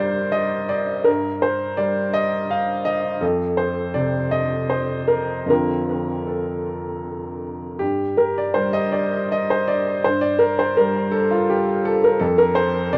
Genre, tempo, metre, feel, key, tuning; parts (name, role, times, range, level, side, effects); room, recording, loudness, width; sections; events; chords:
neoclassical minimalist piano; 75-86 BPM; 3/4; rubato; A4 = 441 Hz
clear upright piano; solo; 0.0-13.0 s; F2 to F5; -21 LUFS; equal; tape echo
moderate booth ambience, RT60 0.2 s; dry, close 1970s-style studio recording; -21 LUFS; mono
0.0-7.8 A section; 7.8-13.0 A section
0.0 N.C.; 3.2 F5; 5.5 Dm7/F; 7.8 N.C.; 12.2 F5